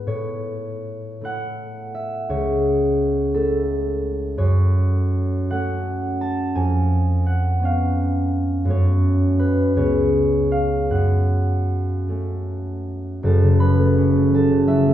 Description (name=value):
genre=classical, solo harp piece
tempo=50-58 BPM (dotted quarters)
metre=6/8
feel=rubato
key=A major, F# minor from 4.4 s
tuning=A4 = 442 Hz
part: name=concert harp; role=solo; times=0.0-14.9 s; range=F#1 to B5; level=-18 LUFS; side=equal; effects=none
room=wet recital hall reverb, RT60 1.6 s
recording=heard from further back in the room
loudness=-18 LUFS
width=side -12 dB against mid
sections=0.0-13.3 A section; 13.3-14.9 B section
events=none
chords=0.1 A; 2.3 A/C#; 4.4 F#m; 6.5 C#7/E#; 8.7 F#m; 9.8 C#7; 10.9 F#m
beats=| 0.08 1.24 | 2.29 3.34 | 4.38 5.50 | 6.55 7.61 | 8.67 9.75 | 10.91 12.10 | 13.25 14.34